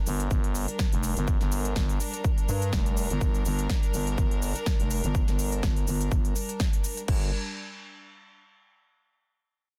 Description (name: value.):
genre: bass house.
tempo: 124 BPM.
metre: 4/4.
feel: swing 55% on 16ths.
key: G minor.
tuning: A4 = 440 Hz.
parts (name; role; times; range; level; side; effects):
warm chamber string section; sustained chords; 0.0-7.3 s; G3 to Bb4; -39 LUFS; equal; sidechain pumping.
growling FM bass; bass; 0.1-7.3 s; F1 to G2; -31 LUFS; equal; overdrive, sidechain pumping.
big-room dance drum kit; drums; 0.1-7.2 s; crash cymbal, hi-hat, shaker, snare drum; -37 LUFS; equal; overdrive, small room ambience.
electronic kick drum; drums; 0.3-7.2 s; none; -29 LUFS; equal; overdrive, small room ambience.
room: digital ambience.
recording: dense, heavily limited modern master.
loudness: -27 LUFS.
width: mono.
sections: 0.0-7.1 A section; 7.1-9.0 B section.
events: filter sweep on FM bass 0.0-7.1.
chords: 0.0 Gm.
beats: 0.31 0.79 | 1.28 1.76 2.25 2.73 | 3.21 3.70 4.18 4.66 | 5.15 5.63 6.12 6.60 | 7.08.